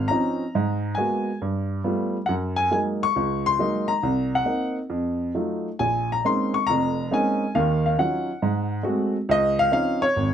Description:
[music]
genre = solo jazz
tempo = 138 BPM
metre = 4/4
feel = swing 67% on 8ths, rubato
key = Db major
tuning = A4 = 439 Hz
[part]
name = warm upright piano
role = solo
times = 0.0-10.3 s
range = F1 to Db6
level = -21 LUFS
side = equal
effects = none
[sound]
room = light reverb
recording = close, detailed microphones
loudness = -21 LUFS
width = side -9 dB against mid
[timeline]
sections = 0.0-10.3 A section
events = none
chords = 0.0 Dbmaj9; 0.6 Abm9; 1.4 G9; 2.3 Gb69; 4.0 Cm7b5; 4.9 F7b9; 5.8 Bbm11; 7.6 Ebm9; 8.4 Ab7b9; 9.3 Dbmaj9

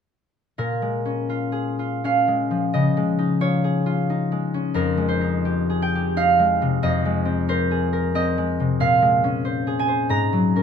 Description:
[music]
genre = classical, solo harp piece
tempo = 76-93 BPM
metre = 3/4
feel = rubato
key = Bb minor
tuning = A4 = 440 Hz
[part]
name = concert harp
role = solo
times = 0.6-10.6 s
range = F2 to Bb5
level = -19 LUFS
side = equal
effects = none
[sound]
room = light reverb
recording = close, detailed microphones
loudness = -19 LUFS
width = side -7 dB against mid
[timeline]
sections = 0.6-10.6 A section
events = none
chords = 0.6 Bbm7; 2.7 Dbadd9; 4.7 Fm9; 6.8 Abadd9/F; 8.8 Bbm9; 10.1 Ab9sus4

